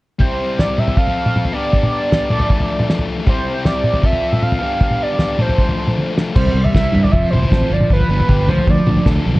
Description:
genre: indie rock.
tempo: 156 BPM.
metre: 4/4.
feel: straight.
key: C major.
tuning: A4 = 440 Hz.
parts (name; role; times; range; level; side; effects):
overdriven synth lead; melody; 0.2-9.1 s; B4 to F5; -21 LUFS; right 2 dB; tape echo.
sludgy distorted guitar; riff; 0.2-9.4 s; F3 to A4; -21 LUFS; left 3 dB; overdrive, tape echo.
cloth-damped thuddy drum kit; drums; 0.2-9.4 s; crash cymbal, kick drum, snare drum, toms; -16 LUFS; equal; none.
crunchy overdriven guitar; riff; 6.4-9.4 s; F2 to C4; -21 LUFS; right 4 dB; wide subtle chorus, tape echo.
growling fingered electric bass; bass; 6.4-9.4 s; F1 to G2; -18 LUFS; equal; overdrive.
room: light reverb, small room ambience.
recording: echo-heavy mix, cassette tape.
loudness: -13 LUFS.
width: side -20 dB against mid.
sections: 0.2-6.4 A section; 6.4-9.4 B section.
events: drum fill 6.0-6.4.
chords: 0.2 C; 1.0 F; 1.5 G; 2.3 Dm; 3.3 C; 4.1 Fmaj7; 4.6 G; 5.4 Dm7; 6.4 C; 7.1 Fmaj7; 7.7 G7; 8.5 Dm.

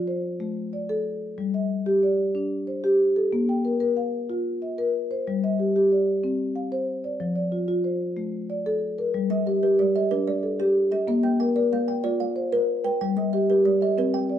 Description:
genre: southern african traditional, mbira-style interlocking cycle.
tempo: 124 BPM (dotted quarters).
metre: 12/8.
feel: straight.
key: G equiheptatonic.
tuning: A4 = 439 Hz.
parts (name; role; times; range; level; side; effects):
marimba with soft mallets; arpeggios; 0.0-14.4 s; F3+29c to G5; -22 LUFS; left 1 dB; none.
kalimba; arpeggios; 9.3-14.4 s; G3 to G5; -28 LUFS; right 8 dB; none.
room: wet large studio reverb, RT60 0.9 s.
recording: band playing live in one room.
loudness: -22 LUFS.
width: side -10 dB against mid.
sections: 0.0-9.1 A section; 9.1-14.4 A section.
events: none.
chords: 0.4 Am; 1.4 G5; 3.3 Bb5; 5.3 G5; 6.2 Csus24; 7.2 F5; 8.2 Am; 9.1 Gm; 11.1 Bb; 13.0 Gm.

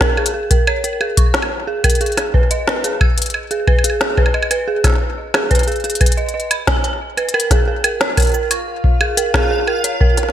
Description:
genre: IDM.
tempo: 90 BPM.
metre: 4/4.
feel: straight.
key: Bb phrygian.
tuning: A4 = 441 Hz.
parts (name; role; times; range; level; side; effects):
dark detuned synth bell; arpeggios; 0.0-10.2 s; Ab4 to E6; -20 LUFS; right 2 dB; chorus, vintage 12-bit sampler grit, digital delay.
electronic kick drum; drums; 0.0-10.1 s; none; -16 LUFS; equal; studio reverb.
organic electronic drum kit; drums; 0.0-10.3 s; cabasa, hi-hat, snare drum, woodblock; -19 LUFS; equal; overdrive, studio reverb, gated reverb, ping-pong delay.
backwards swelling texture; texture; 8.1-10.3 s; F4 to F5; -25 LUFS; left 1 dB; built-in reverb.
room: moderate lush hall reverb, RT60 1.7 s.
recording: bright 1980s-style digital production.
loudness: -14 LUFS.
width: side -11 dB against mid.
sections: 0.0-10.3 A section.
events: none.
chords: 0.0 Bbm7; 2.0 Abm; 7.3 Bb7(no3).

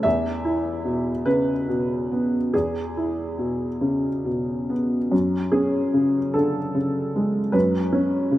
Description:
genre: neoclassical minimalist piano.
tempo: 46-52 BPM (dotted quarters).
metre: 6/8.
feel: rubato.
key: F# minor.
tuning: A4 = 440 Hz.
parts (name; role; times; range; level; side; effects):
felt-muted upright piano; solo; 0.0-8.4 s; E2 to E5; -20 LUFS; equal; none.
room: moderate lush hall reverb, RT60 2.9 s.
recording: rough home demo mix, faint mains hum.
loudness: -21 LUFS.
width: side -14 dB against mid.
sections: 0.0-5.1 A section; 5.1-8.4 A section.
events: none.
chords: 0.0 E; 5.1 F#madd9.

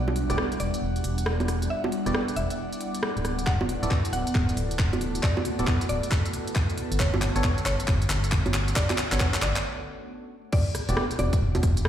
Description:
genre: UK garage, two-step garage.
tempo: 136 BPM.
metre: 4/4.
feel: swing 64% on 16ths.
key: E dorian.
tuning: A4 = 441 Hz.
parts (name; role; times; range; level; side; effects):
mallet-like synth pluck; melody; 0.0-11.4 s; C#5 to F#5; -35 LUFS; left 1 dB; chorus, digital delay.
ethereal airy pad; sustained chords; 0.0-9.6 s; G3 to F#4; -37 LUFS; right 1 dB; ensemble chorus, built-in reverb, sidechain pumping.
organ-like FM bass; bass; 0.0-11.9 s; D1 to B1; -27 LUFS; equal; none.
airy breathy pad; texture; 0.0-11.9 s; G3 to F#5; -34 LUFS; equal; chorus, phaser, sidechain pumping.
garage drum kit; drums; 0.1-11.9 s; bongos, crash cymbal, handclaps, hi-hat, rim click; -29 LUFS; right 1 dB; none.
percussive organ stab; stabs; 0.3-11.0 s; B3 to D5; -33 LUFS; equal; wide subtle chorus, digital delay.
electronic kick drum; drums; 3.5-11.7 s; none; -25 LUFS; equal; none.
room: light reverb.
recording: played on a big sound system in a bare room, large studio reverb.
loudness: -23 LUFS.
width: side -10 dB against mid.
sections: 0.0-10.5 A section; 10.5-11.9 B section.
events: build-up 0.0-10.5; drum fill 3.5-9.6; break 9.6-10.5; drop 10.5-11.9.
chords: 0.0 Em9; 3.2 D6; 6.8 Gmaj9#11; 10.5 Em9.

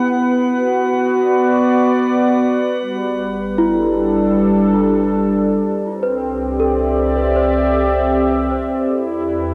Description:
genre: ambient.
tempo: 78 BPM.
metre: 4/4.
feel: straight.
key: G major.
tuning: A4 = 444 Hz.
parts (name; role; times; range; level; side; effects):
warm analog pad; sustained chords; 0.0-9.5 s; G3 to F#5; -17 LUFS; equal; chorus.
drifting glass-harmonics texture; texture; 0.0-2.8 s; F#5; -31 LUFS; equal; chorus, built-in reverb.
round analog bass; bass; 2.8-9.5 s; G1 to E2; -29 LUFS; equal; none.
worn celesta; arpeggios; 3.6-9.1 s; E4 to C5; -24 LUFS; equal; diffuse ambient delay.
room: wet lush hall reverb, RT60 2.6 s.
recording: dark, warm production.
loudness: -17 LUFS.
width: mono.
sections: 0.0-2.8 A section; 2.8-9.5 B section.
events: filter sweep on analog synth pad 0.0-2.8; fade-in on analog synth bass 2.8-9.5; fade-out on celesta 2.8-9.5.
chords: 0.0 Bm; 2.8 Gadd9; 5.9 Cmaj7; 8.9 Em7.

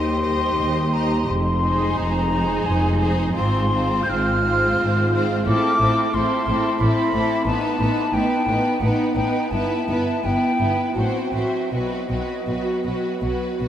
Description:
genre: classical.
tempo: 76-91 BPM.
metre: 3/4.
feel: rubato.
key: unclear.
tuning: A4 = 440 Hz.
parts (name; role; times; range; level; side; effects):
warm studio violin section; melody; 0.0-13.7 s; A4 to Eb5; -32 LUFS; right 1 dB; none.
concert flute; second line; 0.0-13.2 s; D#5 to G6; -24 LUFS; left 1 dB; none.
warm symphonic violin section; second line; 0.0-13.7 s; D#4 to C5; -31 LUFS; left 1 dB; none.
rich studio viola section; accompaniment; 0.0-13.7 s; F#3 to G4; -28 LUFS; right 1 dB; none.
dark French horn section; sustained chords; 0.0-13.7 s; G3 to F#4; -25 LUFS; equal; none.
rich chamber double bass section; bass; 0.0-13.7 s; F1 to Eb2; -26 LUFS; equal; none.
warm symphonic cello section; bass; 0.0-13.7 s; Eb2 to B2; -26 LUFS; equal; none.
room: wet huge ambient reverb, RT60 7.1 s.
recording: in a vast, echoing space.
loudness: -18 LUFS.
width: side -10 dB against mid.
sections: 0.0-13.7 A section.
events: none.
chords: 0.0 Cm/Eb; 1.3 Fm7; 3.3 Fm/Ab; 5.5 Am; 7.5 B7/A; 9.5 Em/G; 11.0 F#dim/A; 11.7 B.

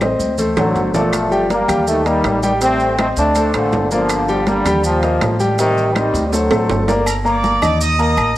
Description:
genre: latin, salsa.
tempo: 162 BPM.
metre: 4/4.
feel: straight.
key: G minor.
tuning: A4 = 440 Hz.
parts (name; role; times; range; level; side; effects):
clear baby grand piano; accompaniment; 0.0-8.3 s; Bb2 to Eb6; -18 LUFS; left 1 dB; cassette tape.
upright bass; bass; 0.0-8.4 s; G1 to Eb2; -21 LUFS; equal; none.
claves; percussion; 0.0-8.4 s; none; -30 LUFS; left 4 dB; none.
congas; percussion; 0.0-8.4 s; none; -26 LUFS; equal; none.
maracas; percussion; 0.0-8.4 s; none; -30 LUFS; right 3 dB; none.
timbales and agogo bells; percussion; 0.0-8.4 s; none; -23 LUFS; right 4 dB; none.
bright trombone section; melody; 0.6-6.9 s; Bb2 to D4; -18 LUFS; equal; cassette tape.
bright trumpet section; melody; 7.1-8.3 s; Bb4 to Eb6; -18 LUFS; right 2 dB; cassette tape.
room: moderate lush hall reverb, RT60 2.6 s.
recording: home recording on cassette.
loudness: -14 LUFS.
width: side -15 dB against mid.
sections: 0.0-7.1 A section; 7.1-8.4 B section.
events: drum fill 0.0-1.1, 6.3-7.1.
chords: 0.4 D7; 1.1 Gm7; 1.9 Eb; 2.6 Am7b5; 3.4 D5; 4.1 Gm7; 4.8 Eb; 5.6 Am7b5; 6.3 D7; 7.1 Gm; 7.8 Eb5.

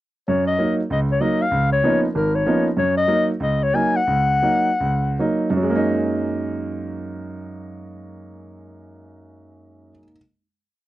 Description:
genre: jazz.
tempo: 134-192 BPM.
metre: 4/4.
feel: swing 63% on 8ths.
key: F# major.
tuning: A4 = 441 Hz.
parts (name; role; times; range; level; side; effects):
mellow clarinet; melody; 0.3-5.2 s; A#4 to G#5; -20 LUFS; left 3 dB; none.
warm concert grand piano; accompaniment; 0.3-10.2 s; G#1 to D#4; -21 LUFS; right 2 dB; none.
room: light reverb.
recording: dry, close 1970s-style studio recording.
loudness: -18 LUFS.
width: side -15 dB against mid.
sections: 0.3-5.6 A section; 5.6-9.2 final chord.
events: slowing down 2.8-5.6.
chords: 0.3 F#6; 1.5 C#13; 2.8 F#6.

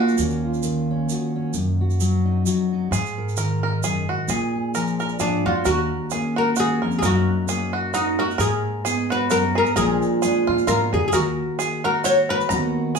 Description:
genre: acoustic folk duo or small band.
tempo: 131 BPM.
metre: 3/4.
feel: swing 55% on 8ths.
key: Eb minor.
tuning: A4 = 440 Hz.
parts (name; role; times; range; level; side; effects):
fingerpicked steel-string acoustic guitar; accompaniment; 0.0-13.0 s; Eb2 to Bb4; -23 LUFS; equal; none.
bluegrass banjo; arpeggios; 0.0-0.2, 2.9-13.0 s; F4 to Bb5; -26 LUFS; right 3 dB; none.
tube shaker; percussion; 0.1-13.0 s; none; -31 LUFS; right 6 dB; none.
upright bass; bass; 0.2-12.7 s; Bb1 to Bb2; -26 LUFS; right 1 dB; none.
oud; melody; 5.2-13.0 s; D4 to Db5; -22 LUFS; left 2 dB; none.
room: moderate studio reverb, RT60 0.7 s.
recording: band playing live in one room, small room ambience.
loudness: -19 LUFS.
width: side -5 dB against mid.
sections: 0.2-5.7 A section; 5.7-13.0 B section.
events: none.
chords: 0.2 Ebm7; 1.5 Ebm/Gb; 2.9 Absus2; 4.3 Bb7; 5.7 Ebm7; 7.0 Gb6; 8.4 Abmadd9; 9.8 Bb7; 11.1 Ebm.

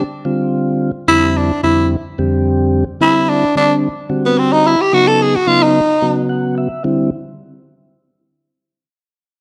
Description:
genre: jazz.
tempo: 218 BPM (eighths).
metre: 7/8.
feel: straight.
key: unclear.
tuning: A4 = 439 Hz.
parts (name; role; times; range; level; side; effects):
mellow tonewheel organ; accompaniment; 0.0-7.1 s; F2 to Gb5; -18 LUFS; equal; slow rotary speaker.
growling tenor saxophone; melody; 1.1-6.2 s; Cb4 to A4; -15 LUFS; equal; slapback echo.
room: moderate echo chamber reverb, RT60 1.6 s, small room ambience.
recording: none.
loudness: -14 LUFS.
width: mono.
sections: 0.0-6.8 A section; 6.8-8.8 B section.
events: tenor saxophone solo 0.0-6.8; tonewheel organ fill 6.0-6.8.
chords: 0.0 Dm11; 1.1 Fsus2; 3.0 Cadd9; 4.9 Dbm11; 6.8 D9sus4.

